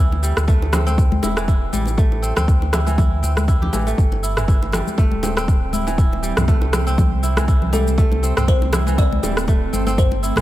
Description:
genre	afro house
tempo	120 BPM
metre	4/4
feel	swing 56% on 16ths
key	unclear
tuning	A4 = 440 Hz
part	kora	arpeggios	0.0-10.4 s	E3 to G4	-25 LUFS	right 2 dB	sidechain pumping, tape echo
part	warm sub bass	bass	0.0-10.4 s	D1 to D2	-21 LUFS	equal	sidechain pumping
part	bongos	percussion	0.1-10.2 s	none	-31 LUFS	right 3 dB	none
part	congas	percussion	0.1-10.4 s	none	-27 LUFS	left 3 dB	none
part	deep house drum kit	drums	0.2-10.4 s	cabasa, rim click, toms	-26 LUFS	equal	none
part	electronic kick drum	drums	0.5-10.1 s	none	-16 LUFS	equal	none
part	ethereal airy pad	sustained chords	4.3-10.4 s	G3 to C4	-29 LUFS	right 2 dB	ensemble chorus, built-in reverb, sidechain pumping
part	kalimba	melody	7.7-10.4 s	A4 to D5	-26 LUFS	left 4 dB	tape echo
room	small room ambience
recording	none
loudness	-15 LUFS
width	side -15 dB against mid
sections	0.0-10.4 A section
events	none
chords	0.0 Am7; 4.0 Gsus4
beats	0.48 0.98 1.48 | 1.98 2.48 2.98 3.48 | 3.98 4.48 4.98 5.48 | 5.98 6.48 6.98 7.48 | 7.98 8.48 8.98 9.48 | 9.98

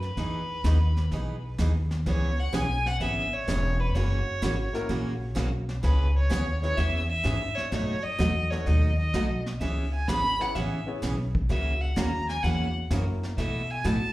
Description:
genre	country, western swing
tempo	127 BPM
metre	4/4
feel	swing 68% on 8ths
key	unclear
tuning	A4 = 439 Hz
part	clear fiddle	melody	0.0-14.1 s	B4 to B5	-31 LUFS	equal	slapback echo
part	upright bass	bass	0.0-14.1 s	E1 to B2	-27 LUFS	equal	none
part	vintage brush drum kit	drums	0.0-14.1 s	brushed snare drum, hi-hat, kick drum, snare drum	-34 LUFS	equal	none
part	picked steel-string acoustic guitar	accompaniment	0.2-14.0 s	B2 to G#4	-31 LUFS	right 2 dB	slapback echo
part	warm upright piano	accompaniment	3.5-13.4 s	A#3 to C#5	-36 LUFS	left 3 dB	slapback echo
room	light reverb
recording	live gig heard through the venue's PA, club reverb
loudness	-24 LUFS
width	side -17 dB against mid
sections	0.0-14.1 A section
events	none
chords	0.2 Emaj7; 2.1 C#m7; 3.9 F#7; 5.8 C#m7; 7.7 B7; 9.6 C#m7; 11.5 F#7/C#; 13.4 B7sus4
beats	| 0.17 0.64 1.11 1.58 | 2.06 2.53 3.00 3.47 | 3.94 4.42 4.89 5.36 | 5.83 6.30 6.78 7.25 | 7.72 8.19 8.66 9.14 | 9.61 10.08 10.55 11.02 | 11.49 11.96 12.44 12.91 | 13.38 13.85

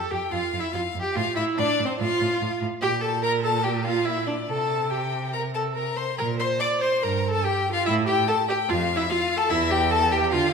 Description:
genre	quick classical-period movement for string quartet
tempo	144 BPM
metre	4/4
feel	rubato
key	F major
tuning	A4 = 440 Hz
part	rich violin	second line	0.0-10.5 s	C4 to D5	-29 LUFS	left 2 dB	none
part	rich viola	accompaniment	0.0-10.5 s	C4 to D5	-27 LUFS	right 4 dB	none
part	rich violin	melody	0.1-10.5 s	C5 to D6	-26 LUFS	left 8 dB	none
part	rich cello	bass	0.1-10.5 s	E2 to D3	-29 LUFS	right 4 dB	none
room	wet scoring stage reverb, RT60 1.5 s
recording	minimal, uncompressed stereo recording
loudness	-22 LUFS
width	side -6 dB against mid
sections	0.0-10.5 A section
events	none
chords	0.0 Fmaj7sus2; 1.1 F/A; 2.8 Gmadd9/Bb; 4.5 C5; 6.2 Bbadd9; 7.0 Gm9; 7.9 Emadd11/A; 8.7 Fmaj7; 9.5 Emadd11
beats	0.32 0.73 | 1.15 1.57 1.99 2.40 | 2.81 3.22 3.64 4.06 | 4.48 4.91 5.33 5.76 | 6.18 6.60 7.03 7.45 | 7.86 8.28 8.69 9.09 | 9.50 9.91 10.32

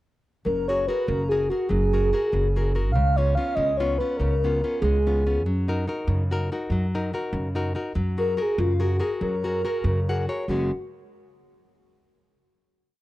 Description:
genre	italian folk, Italian serenade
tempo	96 BPM (dotted quarters)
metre	6/8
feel	straight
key	F# major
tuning	A4 = 440 Hz
part	nylon-string guitar	accompaniment	0.4-10.7 s	F#2 to F#5	-28 LUFS	left 2 dB	none
part	pure breathy sine lead	melody	0.5-5.4, 8.2-10.7 s	E#4 to E#5	-25 LUFS	equal	chorus, slapback echo
part	upright bass	bass	0.5-10.7 s	F#1 to F#2	-25 LUFS	equal	none
room	small room reverb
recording	dry, close 1970s-style studio recording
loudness	-22 LUFS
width	side -16 dB against mid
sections	0.5-10.5 A section; 10.5-11.7 final chord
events	nylon-string guitar fill 9.8-10.5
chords	0.5 F#add9; 2.9 C#7; 5.4 F#6; 8.0 F#add9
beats	| 0.45 1.08 | 1.71 2.33 | 2.95 3.57 | 4.19 4.82 | 5.45 6.08 | 6.71 7.33 | 7.96 8.59 | 9.21 9.85 | 10.48

